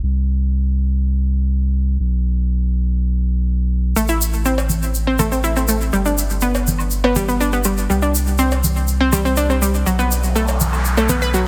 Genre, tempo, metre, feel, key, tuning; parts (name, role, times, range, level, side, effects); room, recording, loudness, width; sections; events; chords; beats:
progressive house; 122 BPM; 4/4; straight; A minor; A4 = 440 Hz
saturated sub bass; bass; 0.0-11.5 s; G1 to C2; -20 LUFS; equal
analog pluck; arpeggios; 4.0-11.4 s; F#3 to B4; -21 LUFS; equal; chorus, delay
egg shaker; percussion; 4.0-11.4 s; -28 LUFS; equal
cowbell, congas and woodblock; percussion; 4.6-11.2 s; -27 LUFS; equal
noise sweep; sound effects; 10.2-11.5 s; -28 LUFS; equal
light reverb, small room ambience; dense, heavily limited modern master; -18 LUFS; mono
0.0-11.5 A section
noise sweep 10.2-11.5
0.0 N.C.; 4.0 Am; 5.9 G; 7.9 Csus2; 9.9 B7(no3)
| 0.03 0.52 1.01 1.50 | 2.00 2.49 2.98 3.47 | 3.96 4.46 4.95 5.44 | 5.93 6.42 6.91 7.41 | 7.90 8.39 8.88 9.37 | 9.86 10.36 10.85 11.34